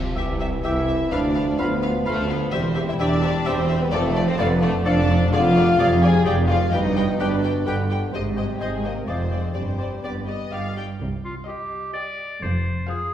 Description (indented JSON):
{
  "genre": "cinematic",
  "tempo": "128 BPM",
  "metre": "3/4",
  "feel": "straight",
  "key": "C major, C minor from 5.3 s",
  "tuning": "A4 = 439 Hz",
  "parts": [
    { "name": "muted studio violin section", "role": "second line", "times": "0.0-13.1 s", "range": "F4 to Ab5", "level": "-32 LUFS", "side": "left 2 dB", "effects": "none" },
    { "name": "warm French horn section", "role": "sustained chords", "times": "0.0-10.5 s", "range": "F3 to Ab4", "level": "-25 LUFS", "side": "left 1 dB", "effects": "none" },
    { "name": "muted studio cello section", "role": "bass", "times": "0.0-12.8 s", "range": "D2 to C3", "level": "-25 LUFS", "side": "right 2 dB", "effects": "none" },
    { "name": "muted studio double bass section", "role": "bass", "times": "0.0-12.8 s", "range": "E1 to D2", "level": "-25 LUFS", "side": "equal", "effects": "none" },
    { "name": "muted studio violin section", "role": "melody", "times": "0.2-13.1 s", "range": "D5 to G5", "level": "-33 LUFS", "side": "left 4 dB", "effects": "none" },
    { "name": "bright clarinet", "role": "second line", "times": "0.2-13.1 s", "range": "F4 to D5", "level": "-34 LUFS", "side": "equal", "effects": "none" },
    { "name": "bright concert flute", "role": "second line", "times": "0.2-10.6 s", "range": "Eb5 to B5", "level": "-35 LUFS", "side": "left 1 dB", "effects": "none" },
    { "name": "warm oboe", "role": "second line", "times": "0.2-10.7 s", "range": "B4 to F5", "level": "-36 LUFS", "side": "right 1 dB", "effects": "none" },
    { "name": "mellow bassoon", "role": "accompaniment", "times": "0.2-10.7 s", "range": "B2 to Ab3", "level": "-29 LUFS", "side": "equal", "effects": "none" },
    { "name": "muted studio viola section", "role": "accompaniment", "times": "0.2-13.1 s", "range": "F4 to D5", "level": "-35 LUFS", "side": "equal", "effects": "none" }
  ],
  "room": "wet scoring stage reverb, RT60 1.8 s",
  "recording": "heard from further back in the room",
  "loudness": "-19 LUFS",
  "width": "side -10 dB against mid",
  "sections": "0.0-11.0 A section; 11.0-13.1 B section",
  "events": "none",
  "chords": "0.0 C; 1.1 Bdim/D; 2.5 C/E; 3.9 Dm/F; 5.3 Ddim/F; 6.7 G; 8.1 Ab; 9.1 Ddim/F; 9.6 G; 11.0 Cm; 12.4 Fm"
}